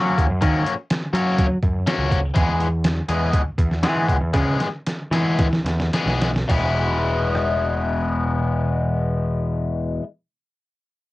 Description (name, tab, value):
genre	indie rock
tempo	104-124 BPM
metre	4/4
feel	straight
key	E lydian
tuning	A4 = 437 Hz
part	biting overdriven guitar	riff	0.0-10.1 s	E2 to G#4	-22 LUFS	left 2 dB	phaser, cassette tape
part	growling picked electric bass	bass	0.0-10.0 s	E1 to F#3	-22 LUFS	equal	overdrive, transformer saturation
part	trip hop sampler-style drum kit	drums	0.2-7.5 s	hi-hat, kick drum, ride cymbal, rim click, snare drum	-22 LUFS	equal	cassette tape
room	little or no reverb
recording	home recording on cassette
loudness	-19 LUFS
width	side -18 dB against mid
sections	0.0-6.5 A section; 6.5-11.1 B section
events	slowing down 2.4-6.5; drum fill 4.3-6.5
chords	0.0 F#; 2.4 E